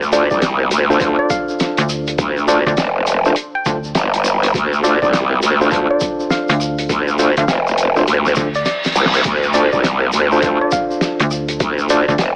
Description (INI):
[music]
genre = glitch hop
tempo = 102 BPM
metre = 4/4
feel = swing 63% on 16ths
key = D minor pentatonic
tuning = A4 = 440 Hz
[part]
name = growl bass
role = bass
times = 0.0-12.4 s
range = F1 to D2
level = -18 LUFS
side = equal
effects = chorus, overdrive
[part]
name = egg shaker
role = percussion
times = 0.0-12.3 s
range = none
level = -31 LUFS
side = equal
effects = none
[part]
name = woody wave-folded pluck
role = melody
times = 0.1-12.2 s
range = D5 to G5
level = -25 LUFS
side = equal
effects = chorus, dub echo
[part]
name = tine electric piano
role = stabs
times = 0.1-12.1 s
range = D4 to C5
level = -22 LUFS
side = equal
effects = overdrive, sidechain pumping, dub echo
[part]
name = damped 70s drum kit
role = drums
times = 0.1-12.3 s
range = crash cymbal, hi-hat, rim click, snare drum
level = -24 LUFS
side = equal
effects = none
[part]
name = electronic kick drum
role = drums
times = 0.3-12.2 s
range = none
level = -30 LUFS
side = equal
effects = overdrive
[part]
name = slap-like FM bass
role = bass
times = 1.8-12.2 s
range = D2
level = -22 LUFS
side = equal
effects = tube saturation
[part]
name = reverse cymbal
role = sound effects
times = 8.3-9.2 s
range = none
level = -24 LUFS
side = equal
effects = none
[sound]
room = small room ambience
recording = AM radio sound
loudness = -16 LUFS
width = mono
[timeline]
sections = 0.0-12.4 A section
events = reverse cymbal 8.3-9.2; drum fill 8.7-9.2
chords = 0.0 Dm7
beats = 0.42 1.01 1.60 | 2.19 2.78 3.37 3.95 | 4.54 5.13 5.72 6.31 | 6.89 7.48 8.07 8.66 | 9.25 9.84 10.42 11.01 | 11.60 12.19